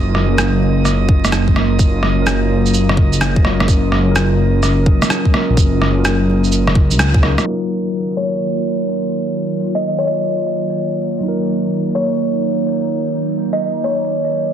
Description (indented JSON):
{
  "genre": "future garage",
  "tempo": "127 BPM",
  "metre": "4/4",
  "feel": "swing 66% on 16ths",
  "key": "Eb minor",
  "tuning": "A4 = 443 Hz",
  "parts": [
    { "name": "warbly tape-like pad", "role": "sustained chords", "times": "0.0-14.5 s", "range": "Db3 to F4", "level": "-21 LUFS", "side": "right 4 dB", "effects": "chorus, built-in reverb, phaser, vintage 12-bit sampler grit, sidechain pumping" },
    { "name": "dark detuned saw bass", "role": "bass", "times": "0.0-7.4 s", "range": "Gb1 to Db2", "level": "-16 LUFS", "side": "equal", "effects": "sidechain pumping" },
    { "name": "drifting glass-harmonics texture", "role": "texture", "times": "0.0-7.5 s", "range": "Eb5", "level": "-30 LUFS", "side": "right 6 dB", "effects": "chorus, built-in reverb" },
    { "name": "electronic rim click and shaker", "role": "drums", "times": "0.1-7.4 s", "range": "none", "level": "-19 LUFS", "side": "right 1 dB", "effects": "overdrive, low-pass filter on perc, soft clipping on snare, low-pass filter on snare, low-pass filter on room" },
    { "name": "mellow tine electric piano", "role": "accompaniment", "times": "0.3-14.5 s", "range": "Gb3 to Bb4", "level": "-22 LUFS", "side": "left 2 dB", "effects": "medium stereo tremolo, sidechain pumping, dub echo" },
    { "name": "electronic kick drum", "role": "drums", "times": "1.1-7.2 s", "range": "none", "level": "-13 LUFS", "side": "equal", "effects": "none" },
    { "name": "kalimba", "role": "melody", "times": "8.2-14.3 s", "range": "Db5 to Eb5", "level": "-20 LUFS", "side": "left 1 dB", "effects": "dub echo" }
  ],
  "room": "light reverb, digital ambience",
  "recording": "dense, heavily limited modern master, vinyl crackle, low-pass filter",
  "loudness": "-13 LUFS",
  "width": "side -9 dB against mid",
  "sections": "0.0-7.5 A section; 7.5-14.5 B section",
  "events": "band accent 7.0; filter sweep 7.5-14.5",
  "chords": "0.0 Gbmaj7; 7.5 Ebmadd9",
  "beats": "0.38 0.85 1.32 | 1.79 2.27 2.74 3.21 | 3.68 4.16 4.63 5.10 | 5.57 6.05 6.52 6.99 | 7.46 7.94 8.41 8.88 | 9.35 9.83 10.30 10.77 | 11.24 11.72 12.19 12.66 | 13.13 13.61 14.08"
}